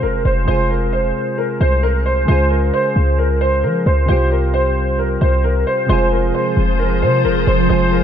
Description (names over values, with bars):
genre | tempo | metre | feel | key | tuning
hip hop | 133 BPM | 4/4 | half-time | F minor | A4 = 442 Hz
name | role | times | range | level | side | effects
warm concert grand piano | melody | 0.0-8.0 s | Bb4 to C5 | -18 LUFS | equal | analog chorus, low-pass filter, diffuse ambient delay
soft electric-piano-like synth keys | accompaniment | 0.0-8.0 s | C3 to Ab4 | -22 LUFS | right 2 dB | chorus, low-pass filter
warm 808-style bass | bass | 0.0-8.0 s | F1 to F3 | -17 LUFS | equal | none
glassy FM pad | sustained chords | 6.1-8.0 s | F3 to C5 | -19 LUFS | equal | ensemble chorus, built-in reverb
room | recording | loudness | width
moderate lush hall reverb, RT60 1.9 s, digital ambience | dreamy mix soaked in reverb | -14 LUFS | side -9 dB against mid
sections
0.0-5.9 A section; 5.9-8.0 B section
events
none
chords
0.0 Fm; 2.3 Db; 4.1 Csus4; 5.9 Fm